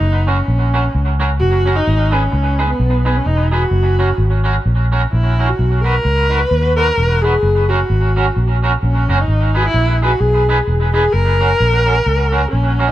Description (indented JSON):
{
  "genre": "ska",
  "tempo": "130 BPM",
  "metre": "4/4",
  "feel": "swing 59% on 8ths",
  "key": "unclear",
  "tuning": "A4 = 441 Hz",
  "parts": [
    { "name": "dark viola", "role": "melody", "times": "0.0-12.9 s", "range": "B3 to B4", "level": "-18 LUFS", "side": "equal", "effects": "none" },
    { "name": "vintage muted fingered electric bass", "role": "bass", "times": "0.0-12.9 s", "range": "E1 to D#2", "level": "-15 LUFS", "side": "equal", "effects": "none" },
    { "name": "twangy electric guitar", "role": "accompaniment", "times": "0.3-12.9 s", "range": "C#4 to B4", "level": "-20 LUFS", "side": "right 3 dB", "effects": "tremolo, tape echo" }
  ],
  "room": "light reverb",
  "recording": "none",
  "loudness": "-12 LUFS",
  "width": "side -14 dB against mid",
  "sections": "0.0-12.9 A section",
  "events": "none",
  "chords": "0.0 F#; 1.9 G#m; 3.7 F#; 5.6 B; 7.4 F#; 9.3 G#m; 11.1 F#"
}